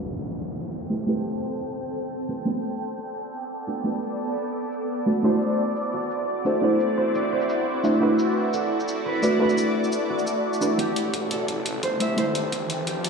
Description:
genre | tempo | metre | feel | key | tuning
liquid drum and bass | 173 BPM | 4/4 | straight | A dorian | A4 = 439 Hz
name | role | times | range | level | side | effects
deep mellow chord stab | accompaniment | 0.0-13.1 s | A3 to B5 | -24 LUFS | right 1 dB | chorus, ping-pong delay
shimmering ambient pad | sustained chords | 0.7-13.1 s | A3 to A5 | -27 LUFS | equal | chorus, built-in reverb, phaser, sidechain pumping
concert harp | arpeggios | 0.0-2.0, 5.2-13.1 s | F#4 to E5 | -29 LUFS | right 1 dB | low-pass filter, digital delay
downlifter and riser | sound effects | 0.0-2.5, 11.4-13.1 s | none | -35 LUFS | equal | none
electronic cabasa and hi-hat | drums | 0.2-13.1 s | none | -33 LUFS | left 1 dB | low-pass filter on hats, low-pass filter on snare, low-pass filter on perc, low-pass filter on room
swelling detuned saw bass | bass | 10.8-13.1 s | G1 to A1 | -33 LUFS | left 1 dB | tube saturation, high-pass filter
electronic kick drum | drums | 10.8-12.9 s | none | -43 LUFS | equal | none
room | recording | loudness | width
wet concert hall reverb, RT60 1.8 s, studio reverb | played on a big sound system in a bare room, large studio reverb, low-pass filter | -22 LUFS | side -5 dB against mid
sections
0.0-10.8 A section; 10.8-13.1 B section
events
filter sweep on drum 0.0-10.8; filter sweep on synth stab 0.0-10.8; filter sweep 0.0-10.8; build-up 10.8-13.1; filter sweep on ambient pad 10.8-13.1; riser 11.4-13.1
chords
0.0 Am7; 2.5 Bm7; 5.2 D9; 8.0 E9sus4; 10.8 Am7

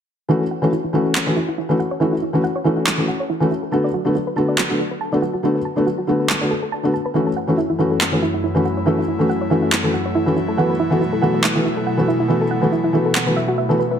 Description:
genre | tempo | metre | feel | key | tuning
future bass | 140 BPM | 4/4 | swing 55% on 16ths, half-time | F# minor | A4 = 441 Hz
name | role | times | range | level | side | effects
felt-muted upright piano | accompaniment | 0.3-13.8 s | D3 to F#4 | -19 LUFS | left 1 dB | ping-pong delay
soft round pluck | arpeggios | 0.3-14.0 s | E4 to A5 | -23 LUFS | right 3 dB | chorus, ping-pong delay
electronic handclaps | drums | 1.2-13.2 s | none | -21 LUFS | right 1 dB | overdrive
airy breathy pad | sustained chords | 7.4-14.0 s | F#2 to E4 | -24 LUFS | equal | chorus, vintage 12-bit sampler grit
room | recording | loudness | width
light reverb, digital ambience | dense, heavily limited modern master | -16 LUFS | side -8 dB against mid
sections
0.3-14.0 A section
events
filter sweep on synth arpeggio sound 0.3-14.0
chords
0.3 F#m7; 3.7 Bm7; 7.2 F#m7; 10.6 B7sus4

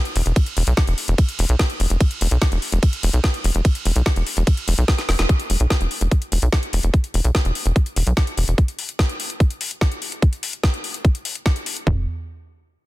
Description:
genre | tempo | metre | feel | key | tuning
psychedelic trance | 146 BPM | 4/4 | straight | unclear | A4 = 442 Hz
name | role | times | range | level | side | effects
garage drum kit | drums | 0.1-11.8 s | hi-hat, ride cymbal, snare drum | -25 LUFS | left 1 dB | none
tight sequencer bass | bass | 0.2-8.5, 11.9-12.1 s | E1 to B1 | -18 LUFS | equal | none
garage drum kit | drums | 0.4-12.0 s | kick drum, toms | -17 LUFS | equal | none
room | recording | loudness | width
little or no reverb | dense, heavily limited modern master | -18 LUFS | side -18 dB against mid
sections
0.0-5.3 A section; 5.3-11.9 B section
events
drop 0.0-5.3; drum fill 5.0-5.3; band accent 5.2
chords
none

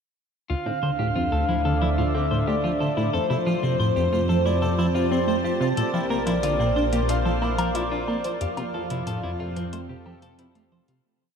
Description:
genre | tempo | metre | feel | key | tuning
ambient, sequencer-driven space music | 91 BPM | 4/4 | straight | F major | A4 = 441 Hz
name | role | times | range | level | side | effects
breathy flute-like synth lead | melody | 0.5-10.0 s | C5 to F5 | -28 LUFS | equal | tremolo, wide subtle chorus, tape echo
lush unison pad | sustained chords | 0.5-11.0 s | D3 to A5 | -28 LUFS | right 1 dB | chorus
clean electric guitar | arpeggios | 0.5-11.0 s | C4 to C5 | -32 LUFS | left 2 dB | auto-pan, tape echo
plucky analog bass | riff | 0.5-11.0 s | D2 to F4 | -26 LUFS | equal | lush chorus, tape echo
analog drone | bass | 1.0-11.0 s | Bb1 to F2 | -29 LUFS | equal | chorus, tube saturation
pulsing gated texture | texture | 0.5-11.1 s | C5 | -37 LUFS | right 3 dB | chorus, built-in reverb
electronic hi-hat and woodblock | percussion | 5.8-11.0 s | none | -36 LUFS | left 5 dB | none
room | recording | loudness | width
wet huge ambient reverb, RT60 6.9 s | in a vast, echoing space | -21 LUFS | side -6 dB against mid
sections
0.5-11.0 A section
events
fade-out 7.5-11.0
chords
0.5 Dm; 3.1 F; 5.8 Bb; 8.4 F

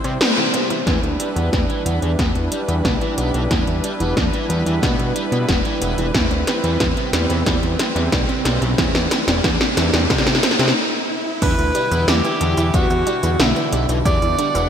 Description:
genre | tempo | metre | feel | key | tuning
synthwave | 91 BPM | 4/4 | straight | E minor | A4 = 440 Hz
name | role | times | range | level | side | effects
brassy analog pad | sustained chords | 0.0-14.7 s | B2 to F#5 | -25 LUFS | right 1 dB | chorus, sidechain pumping
analog pluck | arpeggios | 0.0-14.7 s | D3 to C4 | -29 LUFS | right 3 dB | none
biting overdriven guitar | riff | 0.0-14.7 s | C3 to B3 | -28 LUFS | equal | wide subtle chorus, low-pass filter, ping-pong delay
fat analog bass | bass | 0.0-14.7 s | E1 to C3 | -21 LUFS | equal | none
80s electronic pad drums | drums | 0.0-14.7 s | cabasa, crash cymbal, hi-hat, snare drum | -21 LUFS | equal | gated reverb
electronic kick drum | drums | 0.9-14.2 s | none | -22 LUFS | equal | none
riser | sound effects | 7.1-11.4 s | none | -31 LUFS | right 1 dB | none
bright tenor saxophone | melody | 11.4-14.7 s | E4 to D5 | -22 LUFS | right 1 dB | digital delay
airy dreamy lead | second line | 11.4-14.7 s | E4 to D5 | -27 LUFS | equal | chorus
room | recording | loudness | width
moderate lush hall reverb, RT60 3.1 s | bright 1980s-style digital production | -16 LUFS | side -8 dB against mid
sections
0.9-11.4 A section; 11.4-14.7 B section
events
band accent 0.2-0.5; drum fill 0.9-10.8; stop 10.8-11.4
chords
0.0 Cmaj7; 0.9 Em7; 6.1 Cmaj7; 11.4 Em7

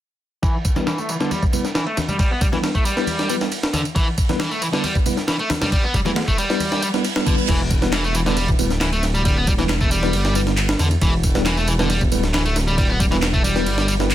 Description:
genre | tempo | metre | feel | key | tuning
breakbeat, breaks | 136 BPM | 4/4 | straight | E minor | A4 = 440 Hz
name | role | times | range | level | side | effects
distorted electric guitar | riff | 0.4-13.9 s | D3 to B3 | -23 LUFS | equal | overdrive, low-pass filter, digital delay
breakbeat sampler-style drum kit | drums | 0.4-14.1 s | crash cymbal, kick drum, ride cymbal, snare drum | -21 LUFS | equal | low-pass filter on cymbals, low-pass filter on kick, low-pass filter on snare
electronic tambourine and handclaps | drums | 0.4-14.1 s | none | -30 LUFS | right 1 dB | none
tine electric piano | stabs | 0.8-14.1 s | G3 to B4 | -25 LUFS | left 1 dB | medium stereo tremolo, low-pass filter, digital delay
congas | percussion | 0.8-7.4 s | none | -29 LUFS | left 2 dB | none
reverse cymbal | sound effects | 6.9-7.5 s | none | -29 LUFS | right 5 dB | none
dark detuned saw bass | bass | 7.5-14.1 s | D1 to E2 | -21 LUFS | equal | none
room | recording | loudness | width
moderate small room reverb, RT60 0.6 s | dense, heavily limited modern master | -17 LUFS | side -12 dB against mid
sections
0.4-7.5 A section; 7.5-14.1 B section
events
filter sweep on distorted electric guitar 0.4-7.5; filter sweep on tine electric piano 0.4-7.5; reverse cymbal 6.9-7.5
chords
0.4 Em

